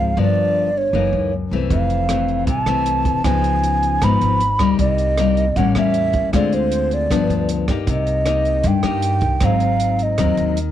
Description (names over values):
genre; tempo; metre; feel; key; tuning
bossa nova; 156 BPM; 4/4; straight; C minor; A4 = 439 Hz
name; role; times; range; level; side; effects
mellow hollow concert flute; melody; 0.0-10.6 s; C5 to Cb6; -20 LUFS; right 3 dB; none
nylon-string guitar; accompaniment; 0.0-10.7 s; F2 to G4; -20 LUFS; left 6 dB; cassette tape
upright bass; bass; 0.0-10.7 s; F1 to G2; -22 LUFS; right 2 dB; none
compact cocktail drum kit; drums; 1.7-10.7 s; hi-hat, kick drum, rim click; -25 LUFS; right 2 dB; cassette tape
room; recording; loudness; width
studio reverb; home recording on cassette; -16 LUFS; side -11 dB against mid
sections
0.0-7.9 A section; 7.9-10.7 A section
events
none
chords
0.2 Gm7; 0.9 F#6; 1.7 Fmaj7; 3.3 Db9; 4.8 Cm7; 5.6 A7b9; 6.3 Dm7b5; 7.1 G7; 7.9 Cm7; 9.4 Ab7